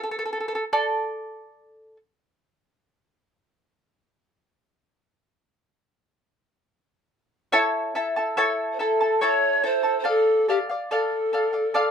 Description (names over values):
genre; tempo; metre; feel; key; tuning
andean folk; 71 BPM; 3/4; straight; unclear; A4 = 441 Hz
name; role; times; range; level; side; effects
charango; accompaniment; 0.0-2.0, 7.5-11.9 s; E4 to A5; -24 LUFS; equal; none
reedy pan flute; melody; 8.7-11.9 s; G4 to C#5; -21 LUFS; left 1 dB; none
room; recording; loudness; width
wet studio ambience, RT60 0.5 s; minimal, uncompressed stereo recording; -21 LUFS; side -7 dB against mid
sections
0.0-7.5 A section; 7.5-11.9 B section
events
charango solo 0.0-7.5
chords
0.0 N.C.; 7.5 A; 10.1 Dm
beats
0.72 1.58 | 2.43 3.28 4.13 | 4.98 5.83 6.67 | 7.52 8.37 9.21 | 10.06 10.90 11.74